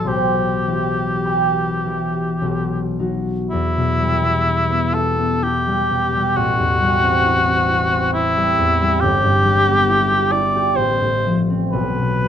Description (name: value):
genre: classical, romantic duo for cor anglais and harp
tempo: 50-70 BPM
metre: 3/4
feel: rubato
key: E minor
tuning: A4 = 440 Hz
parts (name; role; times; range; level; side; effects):
- warm cor anglais; melody; 0.0-12.3 s; E4 to D5; -18 LUFS; left 1 dB; none
- concert harp; accompaniment; 0.0-12.3 s; G1 to C6; -18 LUFS; equal; none
room: moderate large studio reverb, RT60 1.2 s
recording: none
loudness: -16 LUFS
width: side -9 dB against mid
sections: 0.0-3.5 A section; 3.5-12.3 B section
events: none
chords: 0.1 Em/B; 2.4 B; 3.5 Em; 6.4 Am7; 9.0 Em/G; 10.8 F/A; 11.7 N.C.